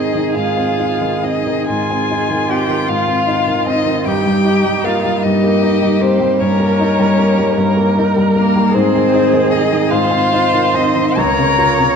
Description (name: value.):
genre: classical, slow romantic movement for piano quartet.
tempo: 44-52 BPM (dotted quarters).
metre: 12/8.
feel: rubato.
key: Ab major.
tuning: A4 = 440 Hz.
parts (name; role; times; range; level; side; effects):
rich violin; melody; 0.0-12.0 s; Bb4 to Bb5; -18 LUFS; left 7 dB; none.
rich cello; second line; 0.0-12.0 s; Bb3 to Bb4; -21 LUFS; right 7 dB; none.
clear concert grand piano; accompaniment; 0.0-12.0 s; Db2 to F4; -16 LUFS; equal; none.
clear viola; accompaniment; 0.0-12.0 s; Eb4 to Db5; -20 LUFS; right 4 dB; none.
room: wet scoring stage reverb, RT60 1.9 s.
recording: dark, warm production.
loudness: -12 LUFS.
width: side -6 dB against mid.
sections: 0.0-12.0 A section.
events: none.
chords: 0.0 Ab; 4.1 Eb7/G; 8.7 Ab; 11.2 Bbm/Db.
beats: 0.35 1.68 2.89 | 4.06 5.23 6.39 7.57 | 8.73 9.91 11.17.